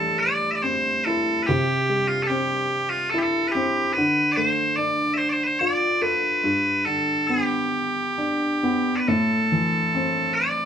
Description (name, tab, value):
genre	celtic folk, Celtic slow air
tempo	66-74 BPM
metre	3/4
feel	rubato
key	A minor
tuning	A4 = 444 Hz
part	loud bright bagpipes	melody	0.0-10.7 s	F4 to E5	-22 LUFS	right 1 dB	none
part	warm upright piano	accompaniment	0.0-10.7 s	G2 to A4	-24 LUFS	left 1 dB	none
room	moderate studio reverb, RT60 0.7 s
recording	band playing live in one room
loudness	-20 LUFS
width	side -8 dB against mid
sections	0.0-10.7 A section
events	none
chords	0.0 Am7; 1.5 C; 4.0 Dm; 6.4 G; 9.1 Am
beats	0.64 | 1.49 2.31 3.13 | 3.96 4.78 5.61 | 6.44 7.30 8.18 | 9.08 9.94